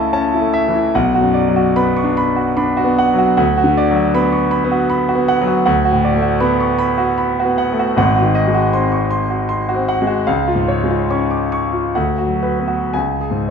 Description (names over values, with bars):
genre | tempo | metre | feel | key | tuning
classical, romantic nocturne for solo piano | 56-82 BPM | 3/4 | rubato | unclear | A4 = 441 Hz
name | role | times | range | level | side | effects
warm concert grand piano | solo | 0.0-13.5 s | G#1 to D6 | -14 LUFS | equal | none
room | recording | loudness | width
moderate recital hall reverb, RT60 1.5 s | minimal, uncompressed stereo recording | -13 LUFS | side -6 dB against mid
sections
0.0-13.5 A section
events
none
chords
0.0 A/C#; 0.9 Bm; 3.4 Bm/D; 5.6 D6; 8.0 G#7; 10.3 C#; 11.9 D6; 12.9 C#5